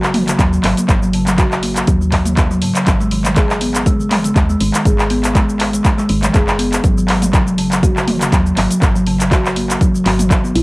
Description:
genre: afro house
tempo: 121 BPM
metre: 4/4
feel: swing 54% on 16ths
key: unclear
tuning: A4 = 440 Hz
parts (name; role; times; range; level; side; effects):
- kalimba; arpeggios; 0.0-10.6 s; C#3 to G#4; -16 LUFS; equal; sidechain pumping, cassette tape, analog delay
- woody FM bass; bass; 0.0-10.6 s; F#1 to G#2; -21 LUFS; equal; sidechain pumping
- deep house drum kit; drums; 0.0-10.6 s; handclaps, hi-hat, shaker, toms; -18 LUFS; equal; cassette tape
- electronic kick drum; drums; 0.4-10.4 s; none; -14 LUFS; equal; cassette tape
room: light reverb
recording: home recording on cassette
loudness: -12 LUFS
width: side -23 dB against mid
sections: 0.0-10.6 A section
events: none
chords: 0.0 F#sus2; 2.9 G#7(no3); 6.8 F#sus2

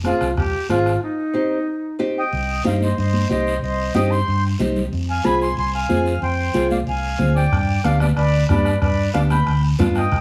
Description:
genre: latin, cumbia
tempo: 185 BPM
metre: 4/4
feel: straight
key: C harmonic minor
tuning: A4 = 440 Hz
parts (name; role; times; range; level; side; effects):
- reedy silver concert flute; melody; 0.0-10.2 s; Eb4 to C6; -26 LUFS; equal; plate reverb
- nylon-string guitar; accompaniment; 0.0-10.0 s; B3 to Ab4; -26 LUFS; equal; none
- fingered electric bass; bass; 0.0-10.2 s; F1 to G2; -23 LUFS; equal; none
- bombo; percussion; 0.0-1.0, 7.5-10.2 s; none; -26 LUFS; equal; none
- congas; percussion; 0.0-10.2 s; none; -29 LUFS; equal; none
- guiro; percussion; 0.0-10.2 s; none; -39 LUFS; equal; none
- mellow accordion; second line; 2.2-10.2 s; B4 to Ab5; -30 LUFS; equal; none
room: moderate studio reverb, RT60 0.9 s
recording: none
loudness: -20 LUFS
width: mono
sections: 0.0-2.3 A section; 2.3-10.2 B section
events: break 1.0-2.3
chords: 0.0 Fm; 1.0 Cm; 4.9 Fm; 7.5 G

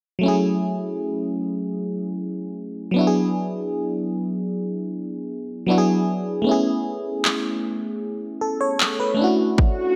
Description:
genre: contemporary R&B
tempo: 77 BPM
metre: 4/4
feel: straight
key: F# minor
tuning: A4 = 437 Hz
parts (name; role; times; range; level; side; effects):
- FM electric piano; accompaniment; 0.2-10.0 s; F#3 to C#5; -24 LUFS; equal; chorus
- trap drum kit; drums; 7.2-9.8 s; handclaps, kick drum; -22 LUFS; equal; overdrive
- swell; sound effects; 9.8-10.0 s; none; -24 LUFS; equal; none
room: light reverb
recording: none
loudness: -23 LUFS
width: mono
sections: 0.2-10.0 A section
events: swell 9.8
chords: 0.2 F#m7; 3.0 E7; 6.5 Amaj9; 9.2 Dmaj7

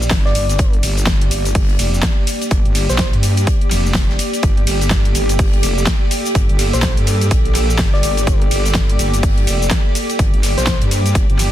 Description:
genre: bass house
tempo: 125 BPM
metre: 4/4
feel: swing 60% on 16ths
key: G minor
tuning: A4 = 440 Hz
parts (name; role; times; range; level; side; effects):
- dark analog pad; sustained chords; 0.0-11.5 s; Bb3 to D5; -26 LUFS; equal; lush chorus, sidechain pumping
- wobble bass; bass; 0.0-11.5 s; F1 to G2; -18 LUFS; equal; chorus, overdrive, sidechain pumping
- big-room dance drum kit; drums; 0.0-11.5 s; cabasa, hi-hat, ride cymbal, snare drum; -21 LUFS; equal; overdrive
- granular cloud pad; texture; 0.0-11.5 s; G4 to D5; -24 LUFS; equal; built-in reverb, sidechain pumping
- electronic kick drum; drums; 0.1-11.3 s; none; -16 LUFS; equal; overdrive
- loose indie drum kit; drums; 0.1-11.5 s; hi-hat, snare drum; -31 LUFS; left 4 dB; none
- soft struck synth lead; melody; 0.3-3.1, 6.7-10.8 s; C5 to D5; -26 LUFS; left 1 dB; chorus, tape echo
room: little or no reverb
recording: dense, heavily limited modern master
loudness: -13 LUFS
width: side -12 dB against mid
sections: 0.0-11.5 A section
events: none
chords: 0.0 Gm

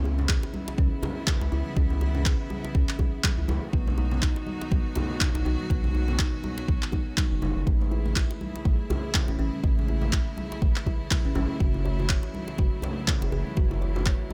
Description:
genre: afro house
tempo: 122 BPM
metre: 4/4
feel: swing 57% on 16ths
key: C# minor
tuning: A4 = 438 Hz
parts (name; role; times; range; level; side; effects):
- rich chamber string section; sustained chords; 0.0-14.3 s; B2 to G#4; -39 LUFS; equal; sidechain pumping
- kalimba; arpeggios; 0.0-14.2 s; G#3 to C#5; -37 LUFS; equal; sidechain pumping, delay
- round analog bass; bass; 0.0-14.2 s; F#1 to C#2; -30 LUFS; equal; sidechain pumping
- djembe; percussion; 0.1-14.3 s; none; -39 LUFS; equal; none
- congas; percussion; 0.2-14.3 s; none; -39 LUFS; equal; none
- electronic handclaps; drums; 0.3-14.2 s; none; -31 LUFS; equal; studio reverb
- electronic kick drum; drums; 0.3-14.2 s; none; -28 LUFS; equal; studio reverb
room: little or no reverb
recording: none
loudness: -26 LUFS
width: mono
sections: 0.0-14.3 A section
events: none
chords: 0.0 C#m7; 3.7 B; 7.7 Amaj7; 11.6 F#m7

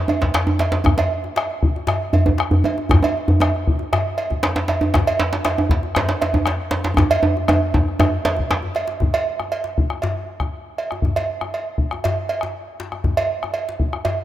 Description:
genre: west african traditional, West African drum ensemble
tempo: 118 BPM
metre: 4/4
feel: straight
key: none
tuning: none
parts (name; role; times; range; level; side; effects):
- cowbell; percussion; 0.1-14.2 s; none; -23 LUFS; right 4 dB; none
- djembe; percussion; 0.1-14.2 s; none; -27 LUFS; left 3 dB; none
- djembe; percussion; 0.1-8.6 s; none; -18 LUFS; right 1 dB; none
- bombo; percussion; 0.2-14.1 s; none; -22 LUFS; left 2 dB; none
room: light reverb, studio ambience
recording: rough home demo mix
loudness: -17 LUFS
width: side -13 dB against mid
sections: 0.0-9.0 A section; 9.0-14.2 B section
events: drum fill 7.0-9.0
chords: none

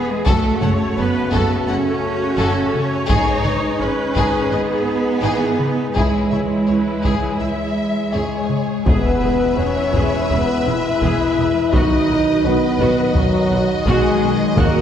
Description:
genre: cinematic, epic orchestral film score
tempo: 84 BPM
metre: 4/4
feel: straight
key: unclear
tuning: A4 = 440 Hz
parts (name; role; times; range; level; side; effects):
- rich symphonic viola section; accompaniment; 0.0-14.8 s; E3 to C#5; -26 LUFS; right 1 dB; none
- clear trombone section; sustained chords; 0.0-14.8 s; C#3 to G#4; -27 LUFS; right 1 dB; none
- mellow French horn section; sustained chords; 0.0-14.8 s; F#3 to C#5; -21 LUFS; left 2 dB; none
- rich symphonic cello section; bass; 0.0-14.6 s; Eb2 to D#4; -23 LUFS; right 2 dB; none
- warm symphonic violin section; melody; 0.3-14.8 s; G#4 to F#5; -26 LUFS; left 3 dB; none
- dark symphonic violin section; second line; 0.3-14.8 s; D#4 to E5; -27 LUFS; left 3 dB; none
- warm symphonic double bass section; bass; 0.3-14.7 s; E1 to Eb2; -24 LUFS; right 2 dB; none
- taiko ensemble; drums; 0.3-14.8 s; none; -22 LUFS; equal; none
- impact; sound effects; 8.9-11.7 s; none; -29 LUFS; equal; none
- timpani; percussion; 14.6-14.8 s; Eb3; -23 LUFS; right 1 dB; none
room: wet scoring stage reverb, RT60 2.0 s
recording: heard from further back in the room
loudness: -15 LUFS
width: side -9 dB against mid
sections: 0.0-8.9 A section; 8.9-14.8 B section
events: impact 8.9-11.7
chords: 0.3 F#m; 3.1 G#m; 6.0 C#m; 8.9 E; 11.7 B

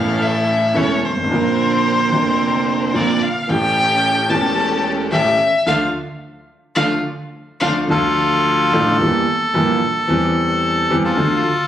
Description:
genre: tango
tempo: 110 BPM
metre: 4/4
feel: rubato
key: D minor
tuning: A4 = 443 Hz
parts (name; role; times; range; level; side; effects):
- rich violin; second line; 0.0-7.8 s; C5 to A5; -18 LUFS; left 2 dB; none
- dark concert grand piano; accompaniment; 0.0-11.4 s; E1 to A4; -18 LUFS; right 1 dB; none
- rich studio string section; stabs; 0.0-7.8 s; C4 to Bb4; -24 LUFS; right 2 dB; none
- upright bass; bass; 0.0-11.4 s; E1 to E2; -31 LUFS; right 3 dB; none
- bandoneon; melody; 7.9-11.7 s; F4 to A4; -17 LUFS; left 1 dB; none
room: wet large studio reverb, RT60 1.4 s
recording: recorded on a phone in the room, club reverb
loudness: -14 LUFS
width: side -10 dB against mid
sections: 0.0-7.9 A section; 7.9-11.7 B section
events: violin solo 0.0-7.9; band accent 5.7-7.9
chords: 0.0 A; 1.3 Bbadd9; 3.5 A7; 5.7 Dm; 9.0 Edim; 10.1 C/E; 11.2 Dm

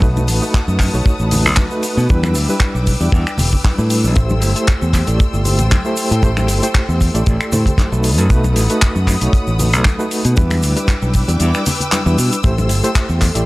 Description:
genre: nu-disco, nu disco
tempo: 116 BPM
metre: 4/4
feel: swing 54% on 16ths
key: A minor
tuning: A4 = 441 Hz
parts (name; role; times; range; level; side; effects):
- reed electric piano; accompaniment; 0.0-13.5 s; G3 to D5; -21 LUFS; equal; fast tremolo, sidechain pumping, analog delay
- rich studio string section; sustained chords; 0.0-13.5 s; A4 to E6; -25 LUFS; left 1 dB; sidechain pumping
- modern bright fingered electric bass; bass; 0.0-13.4 s; E1 to B2; -15 LUFS; equal; none
- kick drum; drums; 0.0-13.3 s; none; -14 LUFS; equal; none
- tight funk drum kit; drums; 0.0-13.5 s; finger snaps, handclaps, hi-hat, shaker; -21 LUFS; left 1 dB; none
- congas and tube shaker; percussion; 0.2-13.4 s; none; -24 LUFS; left 1 dB; none
room: studio reverb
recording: dry, gritty hardware recording, transformer saturation, cassette tape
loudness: -13 LUFS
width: side -20 dB against mid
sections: 0.0-13.5 A section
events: kick drops out 11.4-12.4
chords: 0.0 B7; 2.1 Em7; 4.2 Am7; 8.0 B7; 10.4 Em7; 12.4 Am7

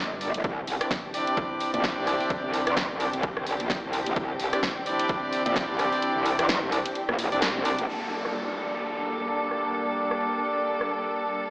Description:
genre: bass house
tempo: 129 BPM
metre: 4/4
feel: swing 58% on 16ths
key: G dorian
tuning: A4 = 440 Hz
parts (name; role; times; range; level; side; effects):
- metallic wobble bass; bass; 0.0-7.9 s; G1 to E2; -28 LUFS; equal; chorus, overdrive, sidechain pumping
- brilliant horn section; stabs; 0.2-11.5 s; Bb3 to D5; -28 LUFS; equal; sidechain pumping, low-pass filter, dub echo
- house drum kit; drums; 0.2-11.2 s; hi-hat, rim click, snare drum; -30 LUFS; equal; low-pass filter on hats, low-pass filter on snare
- warm studio string section; sustained chords; 0.4-11.5 s; E3 to A4; -32 LUFS; equal; sidechain pumping
- electronic kick drum; drums; 0.4-5.7 s; none; -32 LUFS; equal; overdrive
- downlifter; sound effects; 7.9-11.5 s; none; -36 LUFS; equal; none
room: moderate plate reverb, RT60 2.0 s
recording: played on a big sound system in a bare room, large studio reverb, AM radio sound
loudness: -24 LUFS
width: side -25 dB against mid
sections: 0.0-7.9 A section; 7.9-11.5 B section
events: kick drops out 6.0-7.9; band accent 7.4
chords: 0.4 Cadd9; 7.9 Gmadd9

